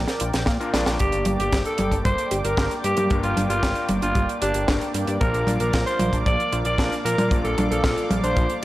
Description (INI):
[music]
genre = italo disco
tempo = 114 BPM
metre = 4/4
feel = straight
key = G minor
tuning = A4 = 440 Hz
[part]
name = warm analog pad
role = sustained chords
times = 0.0-8.6 s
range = Bb3 to D6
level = -30 LUFS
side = right 1 dB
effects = chorus, shimmer reverb
[part]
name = analog pluck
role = arpeggios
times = 0.0-8.4 s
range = F3 to F5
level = -31 LUFS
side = right 1 dB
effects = chorus, analog delay, shimmer reverb
[part]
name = clear electric grand piano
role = stabs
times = 0.0-8.6 s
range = G2 to D5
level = -32 LUFS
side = left 2 dB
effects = low-pass filter, shimmer reverb
[part]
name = fat analog bass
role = bass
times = 0.0-8.5 s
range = G1 to Bb2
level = -27 LUFS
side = equal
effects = none
[part]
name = tight funk drum kit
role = drums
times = 0.1-8.6 s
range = hi-hat, snare drum, toms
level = -27 LUFS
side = right 1 dB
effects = none
[part]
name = kick drum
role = drums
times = 0.5-8.5 s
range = none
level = -24 LUFS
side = equal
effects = none
[part]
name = growling alto saxophone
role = melody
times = 1.0-8.6 s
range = D4 to D5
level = -24 LUFS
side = equal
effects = shimmer reverb
[sound]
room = light reverb, small room ambience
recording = dry, gritty hardware recording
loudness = -20 LUFS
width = side -16 dB against mid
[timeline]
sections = 1.0-8.6 A section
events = drum fill 0.0-1.0; filter sweep on synth arpeggio sound 1.0-8.6; filter sweep on electric grand piano 1.0-8.6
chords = 0.0 Bb; 1.0 Gm; 5.2 Bb